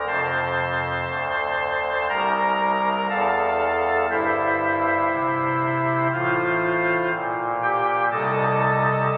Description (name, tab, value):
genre	classical, chorale-style piece for pipe organ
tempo	60 BPM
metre	4/4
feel	rubato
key	unclear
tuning	A4 = 442 Hz
part	pipe organ, soft reed	solo	0.0-9.2 s	F1 to C6	-22 LUFS	equal	none
room	wet church reverb, RT60 3.5 s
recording	recorded on a phone in the room, studio reverb, compression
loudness	-22 LUFS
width	mono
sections	0.0-9.2 A section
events	none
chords	0.1 F; 4.1 C/G; 6.1 F/A; 8.1 Adim/C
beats	| 0.07 1.08 2.09 3.09 | 4.09 5.10 6.11 7.12 | 8.12 9.12